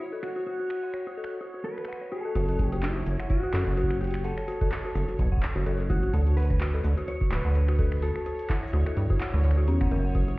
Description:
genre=IDM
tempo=127 BPM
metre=4/4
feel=swing 56% on 16ths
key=F# minor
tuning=A4 = 438 Hz
part: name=mellow electric guitar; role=melody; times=0.0-9.4 s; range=E4 to C#5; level=-34 LUFS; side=equal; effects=tape echo
part: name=dark detuned synth bell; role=arpeggios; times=0.0-10.4 s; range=C#4 to F#5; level=-34 LUFS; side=left 3 dB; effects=chorus, ping-pong delay
part: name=bubbling stepped-filter texture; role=texture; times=0.0-10.4 s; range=C#5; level=-45 LUFS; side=right 3 dB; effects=chorus, built-in reverb
part: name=electro analog drum machine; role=drums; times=0.2-10.4 s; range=cabasa, finger snaps, handclaps, hi-hat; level=-40 LUFS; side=equal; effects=digital delay
part: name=deep acid bass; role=bass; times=2.4-10.4 s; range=D1 to G2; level=-24 LUFS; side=equal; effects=none
part: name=electronic kick drum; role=drums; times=2.6-10.3 s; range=none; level=-27 LUFS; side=equal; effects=none
room=digital ambience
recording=heard muffled through a wall, stone room reverb, EQ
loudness=-24 LUFS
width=side -21 dB against mid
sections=0.0-2.4 A section; 2.4-10.4 B section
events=none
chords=0.0 Bsus2 (rootless); 2.4 F#m; 6.1 Dsus2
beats=| 0.47 0.94 1.41 1.88 | 2.35 2.83 3.30 3.77 | 4.25 4.72 5.19 5.66 | 6.13 6.61 7.08 7.55 | 8.02 8.50 8.97 9.44 | 9.91

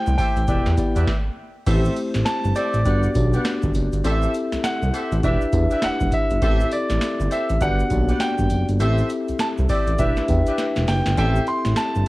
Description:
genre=R&B, new jack swing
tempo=101 BPM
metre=4/4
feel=swing 61% on 16ths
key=A dorian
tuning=A4 = 439 Hz
part: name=warm concert grand piano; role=melody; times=0.0-12.1 s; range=D5 to C6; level=-25 LUFS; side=equal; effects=cassette tape
part: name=mellow tine electric piano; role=accompaniment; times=0.0-12.1 s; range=A3 to G5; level=-25 LUFS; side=left 2 dB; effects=none
part: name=smooth synth bass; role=bass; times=0.1-12.0 s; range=E1 to E2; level=-21 LUFS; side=equal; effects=none
part: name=tube shaker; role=percussion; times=0.1-12.1 s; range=none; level=-48 LUFS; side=right 4 dB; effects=none
part: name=warm horn section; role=stabs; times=0.2-11.5 s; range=G4 to F#5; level=-31 LUFS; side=equal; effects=none
part: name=booming analog drum machine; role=drums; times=0.2-11.9 s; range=crash cymbal, hi-hat, kick drum, snare drum, tambourine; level=-24 LUFS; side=equal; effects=cassette tape
room=little or no reverb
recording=home recording on cassette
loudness=-18 LUFS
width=side -19 dB against mid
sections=0.0-1.7 A section; 1.7-12.1 A section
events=stop 1.1-1.7; drum fill 10.6-11.2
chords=0.5 Em7; 1.7 Am7; 2.9 Gmaj7; 4.0 Am7; 5.2 Em7; 6.4 Am7; 7.6 Gmaj7; 8.8 Am7; 10.0 Em7; 11.2 Am7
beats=0.48 1.07 | 1.67 2.26 2.86 3.45 | 4.04 4.64 5.23 5.83 | 6.42 7.01 7.61 8.20 | 8.80 9.39 9.98 10.58 | 11.17 11.77

